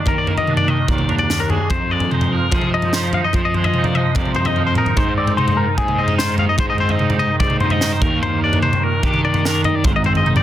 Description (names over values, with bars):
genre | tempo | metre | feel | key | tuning
math rock and midwest emo | 147 BPM | 4/4 | straight | Ab lydian | A4 = 441 Hz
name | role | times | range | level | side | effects
twangy electric guitar | accompaniment | 0.0-10.4 s | Eb2 to Eb4 | -25 LUFS | right 10 dB | ensemble chorus
twangy electric guitar | arpeggios | 0.0-10.4 s | G4 to F5 | -20 LUFS | left 4 dB | phaser
fuzz picked electric bass | bass | 0.1-10.4 s | Ab1 to F3 | -22 LUFS | equal | overdrive
crisp fusion drum kit | drums | 0.1-10.4 s | kick drum, snare drum, toms | -19 LUFS | equal | none
room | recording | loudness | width
light reverb | dense, heavily limited modern master | -15 LUFS | side -12 dB against mid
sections
0.0-10.4 A section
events
drum fill 4.6-5.0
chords
0.0 Ebmaj7(no3); 1.7 Fm7; 5.0 Ab; 8.0 Ebmaj7(no3); 9.9 Ab